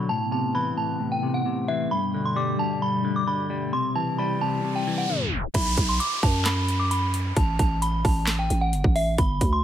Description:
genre	hip hop, trap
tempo	132 BPM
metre	4/4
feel	half-time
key	B phrygian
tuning	A4 = 440 Hz
part	delicate synth tine bell	melody	0.0-9.6 s	E5 to D6	-27 LUFS	right 1 dB	chorus, low-pass filter
part	semi-hollow electric guitar	accompaniment	0.0-5.5 s	G2 to G3	-27 LUFS	left 4 dB	low-pass filter
part	hollow soft pad	sustained chords	0.0-5.5 s	B2 to E4	-31 LUFS	equal	ensemble chorus
part	riser and downlifter	sound effects	4.3-9.2 s	none	-32 LUFS	right 1 dB	none
part	growling 808-style bass	bass	5.5-9.6 s	G1 to F#2	-24 LUFS	right 1 dB	none
part	trap drum kit	drums	5.5-9.5 s	crash cymbal, handclaps, hi-hat, kick drum, snare drum	-24 LUFS	right 1 dB	overdrive
room	light reverb, digital ambience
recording	tape stop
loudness	-22 LUFS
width	side -10 dB against mid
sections	0.0-5.5 A section; 5.5-9.6 B section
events	riser 4.3-5.5; tape stop 5.1-5.5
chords	0.1 Amadd9; 1.9 Gadd9; 3.7 C; 5.5 B5; 7.4 N.C.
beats	| 0.09 0.55 1.00 1.46 | 1.91 2.37 2.82 3.27 | 3.73 4.18 4.64 5.09 | 5.55 6.00 6.46 6.91 | 7.37 7.82 8.28 8.73 | 9.18

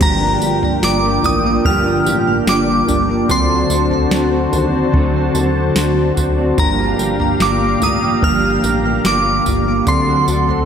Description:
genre	dream pop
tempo	73 BPM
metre	4/4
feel	straight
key	G minor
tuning	A4 = 439 Hz
part	glassy synth bell	melody	0.0-10.7 s	Bb5 to F6	-18 LUFS	right 1 dB	chorus, phaser, slapback echo, digital delay
part	mellow electric guitar	accompaniment	0.0-10.7 s	G2 to A4	-22 LUFS	right 2 dB	harmonic tremolo, analog chorus, slapback echo
part	warm analog pad	sustained chords	0.0-10.7 s	D4 to C6	-20 LUFS	right 1 dB	wide subtle chorus
part	mellow electric guitar	arpeggios	0.0-10.7 s	G2 to Bb4	-20 LUFS	left 2 dB	ensemble chorus, digital delay
part	chorused synth bass	bass	0.0-10.6 s	G1 to Eb2	-22 LUFS	equal	none
part	soft vintage rhythm box	drums	0.0-10.7 s	crash cymbal, kick drum, snare drum, tambourine, toms	-21 LUFS	right 1 dB	overdrive
room	wet lush hall reverb, RT60 2.7 s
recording	big arena sound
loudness	-13 LUFS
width	side -8 dB against mid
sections	0.0-10.7 A section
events	none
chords	0.0 Gm7; 3.3 D7; 6.6 Gm7; 9.9 D7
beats	| 0.01 0.83 1.65 2.47 | 3.29 4.12 4.94 5.76 | 6.58 7.40 8.22 9.05 | 9.87

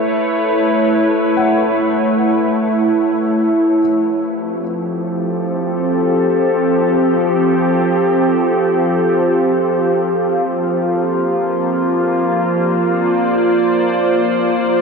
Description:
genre	ambient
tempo	free time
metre	none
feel	none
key	unclear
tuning	A4 = 440 Hz
part	evolving wavetable pad	sustained chords	0.0-14.8 s	F3 to D5	-14 LUFS	equal	chorus, built-in reverb
part	felt-muted upright piano	arpeggios	0.0-3.8 s	Gb5	-27 LUFS	left 2 dB	ping-pong delay
part	analog drone	drone	4.7-14.8 s	F3 to F4	-20 LUFS	equal	chorus
room	wet huge ambient reverb, RT60 8.2 s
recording	worn, warbling old tape, cassette tape, warbly pitch drift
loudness	-13 LUFS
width	side -4 dB against mid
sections	0.0-3.8 A section; 3.8-14.8 B section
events	none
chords	0.0 A; 3.8 F; 10.3 Bbmaj7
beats	free time

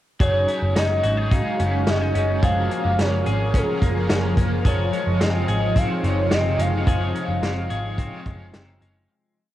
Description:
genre	dream pop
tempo	108 BPM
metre	4/4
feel	straight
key	unclear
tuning	A4 = 445 Hz
part	warm velvety synth lead	melody	0.2-8.5 s	Ab4 to F5	-26 LUFS	equal	chorus, cassette tape, analog delay
part	biting overdriven guitar	accompaniment	0.2-9.1 s	Gb3 to Db5	-33 LUFS	right 4 dB	harmonic tremolo, ensemble chorus, cassette tape
part	shimmering ambient pad	sustained chords	0.9-9.1 s	C3 to Bb4	-28 LUFS	right 1 dB	chorus, built-in reverb, cassette tape
part	clean electric guitar	arpeggios	0.2-9.5 s	F3 to Ab4	-28 LUFS	left 3 dB	analog chorus, cassette tape, analog delay
part	vintage muted picked electric bass	bass	0.2-9.1 s	Gb1 to Ab1	-23 LUFS	equal	none
part	vintage drum kit	drums	0.2-8.9 s	hi-hat, kick drum, snare drum	-23 LUFS	equal	cassette tape
room	light reverb, small room ambience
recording	home recording on cassette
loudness	-19 LUFS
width	side -13 dB against mid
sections	0.2-9.1 verse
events	fade-out 6.9-9.1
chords	0.2 Ab7sus4/Gb; 2.4 Gbmaj9; 4.6 Dbmaj7/Gb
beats	| 0.20 0.76 1.31 1.87 | 2.43 2.98 3.54 4.09 | 4.65 5.20 5.76 6.32 | 6.87 7.43 7.98 8.54

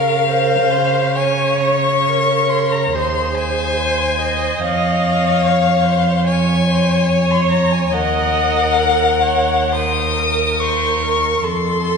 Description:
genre	classical, slow romantic movement for string quartet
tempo	71 BPM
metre	4/4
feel	rubato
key	unclear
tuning	A4 = 438 Hz
part	rich violin	melody	0.0-12.0 s	F5 to Eb6	-18 LUFS	left 6 dB	none
part	rich violin	second line	0.0-12.0 s	A4 to Db5	-21 LUFS	left 2 dB	none
part	rich viola	accompaniment	0.0-12.0 s	Ab4 to Eb5	-22 LUFS	right 5 dB	none
part	warm cello	bass	0.0-12.0 s	Eb2 to Db3	-20 LUFS	right 3 dB	none
room	wet concert hall reverb, RT60 2.1 s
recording	recorded in a church or concert hall, nothing above 10.5 kHz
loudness	-14 LUFS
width	side -5 dB against mid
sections	0.0-12.0 A section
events	none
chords	0.0 Bbm/Db; 1.2 Bbm7/Db; 2.9 Ab/Eb; 4.6 Db/F; 7.9 Ebm; 11.4 F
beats	0.28 | 1.16 2.08 2.93 3.77 | 4.60 5.44 6.26 7.09 | 7.92 8.76 9.72 10.60 | 11.44

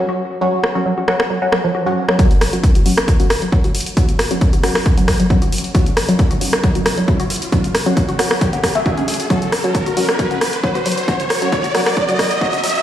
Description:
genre	driving peak-time techno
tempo	135 BPM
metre	4/4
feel	straight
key	unclear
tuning	A4 = 439 Hz
part	filtered dub chord stab	stabs	0.0-12.5 s	F#3 to F#4	-21 LUFS	equal	phaser, sidechain pumping, dub echo
part	woody wave-folded pluck	riff	0.1-12.7 s	E#3 to F#4	-22 LUFS	left 1 dB	tube saturation, lush chorus, sidechain pumping, digital delay
part	techno drum kit	drums	0.6-12.8 s	hi-hat, rim click	-20 LUFS	equal	overdrive, studio reverb
part	electronic kick drum	drums	2.2-12.5 s	none	-16 LUFS	equal	overdrive, studio reverb
part	riser	sound effects	3.8-12.8 s	none	-23 LUFS	right 1 dB	none
room	moderate lush hall reverb, RT60 1.9 s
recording	played on a big sound system in a bare room, stone room reverb, high-pass filter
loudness	-14 LUFS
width	side -11 dB against mid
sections	0.0-2.2 A section; 2.2-12.8 B section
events	filter sweep on synth arpeggio sound 0.0-2.2, 2.2-12.8; build-up 2.2-12.8; filter sweep on synth stab 2.2-12.8; filter sweep 2.2-12.8; riser 3.8-12.8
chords	0.0 F#5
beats	| 0.41 0.86 1.30 1.75 | 2.19 2.63 3.08 3.52 | 3.97 4.41 4.86 5.30 | 5.75 6.19 6.63 7.08 | 7.52 7.97 8.41 8.86 | 9.30 9.75 10.19 10.63 | 11.08 11.52 11.97 12.41

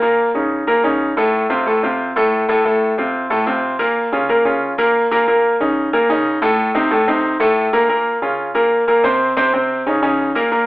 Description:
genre	latin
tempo	183 BPM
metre	4/4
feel	straight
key	unclear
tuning	A4 = 439 Hz
part	bright concert grand piano	solo	0.0-10.7 s	A2 to C5	-14 LUFS	equal	none
room	wet studio reverb, RT60 0.6 s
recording	heard from further back in the room, telephone sound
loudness	-14 LUFS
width	side -19 dB against mid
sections	0.0-7.9 A section; 7.9-10.7 B section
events	none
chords	0.0 Eb5; 1.3 F; 4.0 Bbm; 5.3 Eb5; 6.6 Adim; 7.9 Bbm; 8.5 Bbsus2; 9.2 N.C.; 9.9 Eb5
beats	| 0.01 0.34 0.67 1.00 | 1.33 1.66 1.99 2.32 | 2.65 2.97 3.30 3.63 | 3.96 4.29 4.62 4.94 | 5.27 5.60 5.93 6.25 | 6.58 6.91 7.24 7.57 | 7.89 8.22 8.55 8.88 | 9.21 9.53 9.86 10.19 | 10.52

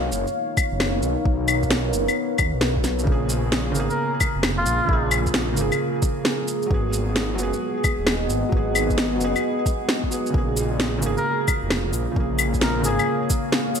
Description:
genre	future garage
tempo	132 BPM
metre	4/4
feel	swing 66% on 16ths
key	Bb phrygian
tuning	A4 = 440 Hz
part	deep dark ambient pad	sustained chords	0.0-13.8 s	Bb3 to Gb5	-26 LUFS	left 1 dB	chorus, built-in reverb, sidechain pumping
part	swelling detuned saw bass	bass	0.0-13.0 s	Eb1 to D#2	-26 LUFS	equal	sidechain pumping
part	electronic shaker, claves, snare drum and cabasa	drums	0.1-13.8 s	none	-24 LUFS	left 1 dB	overdrive, studio reverb, gated reverb
part	electronic kick drum	drums	0.6-13.4 s	none	-23 LUFS	equal	overdrive, studio reverb
part	felt-muted upright piano	accompaniment	3.0-13.8 s	Db3 to Ab4	-27 LUFS	right 3 dB	sidechain pumping, ping-pong delay
part	trumpet with cup mute	melody	3.9-5.2, 11.2-13.3 s	F4 to Bb4	-26 LUFS	left 1 dB	ping-pong delay
room	moderate lush hall reverb, RT60 1.6 s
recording	bright 1980s-style digital production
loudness	-20 LUFS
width	side -7 dB against mid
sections	0.0-13.8 A section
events	none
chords	0.0 Bmaj9#11; 3.1 Bbm7; 6.7 Abm7; 10.3 Bbm7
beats	0.35 0.80 | 1.25 1.71 2.16 2.62 | 3.07 3.53 3.98 4.44 | 4.89 5.35 5.80 6.25 | 6.71 7.16 7.62 8.07 | 8.53 8.98 9.44 9.89 | 10.35 10.80 11.26 11.71 | 12.16 12.62 13.07 13.53

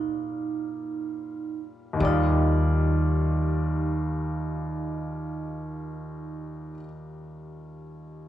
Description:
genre	jazz ballad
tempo	free time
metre	none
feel	none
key	Eb major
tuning	A4 = 440 Hz
part	vibraphone with medium hard mallets	melody	0.0-6.8 s	Eb4	-32 LUFS	right 7 dB	none
part	warm baby grand piano	accompaniment	0.0-8.3 s	Eb2 to D5	-29 LUFS	left 1 dB	none
part	upright bass	bass	0.0-6.7 s	Eb2 to Bb2	-28 LUFS	left 1 dB	none
room	moderate large studio reverb, RT60 1.2 s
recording	nothing above 10.6 kHz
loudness	-24 LUFS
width	side -12 dB against mid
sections	0.0-2.0 A section; 2.0-7.1 B section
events	slowing down 0.0-2.0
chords	0.0 Ebmaj7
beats	free time

